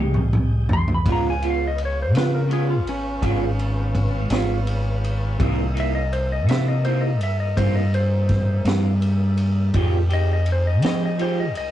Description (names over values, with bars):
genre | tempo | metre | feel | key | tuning
slow blues | 55 BPM (dotted quarters) | 12/8 | straight | F minor | A4 = 440 Hz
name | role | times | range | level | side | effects
clean lap steel guitar | melody | 0.0-11.7 s | Db4 to C6 | -27 LUFS | left 2 dB | none
electric guitar through a small old amp | accompaniment | 0.0-11.4 s | C3 to G4 | -26 LUFS | right 3 dB | harmonic tremolo
tonewheel organ | sustained chords | 0.0-11.7 s | Ab3 to G5 | -36 LUFS | right 1 dB | slow rotary speaker
deep dub fingered electric bass | bass | 0.0-11.7 s | Ab1 to F3 | -21 LUFS | equal | none
crunchy breakbeat drum kit | drums | 0.1-11.7 s | kick drum, ride cymbal, snare drum, toms | -25 LUFS | equal | none
room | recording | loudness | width
light reverb | rough rehearsal-room recording, tube saturation, nothing above 10.5 kHz | -19 LUFS | side -12 dB against mid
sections
0.0-11.7 A section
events
drum fill 0.0-1.1; electric slide guitar solo 0.0-11.7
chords
0.0 Fm9; 1.1 Db7; 5.4 C7#9; 9.8 Fm9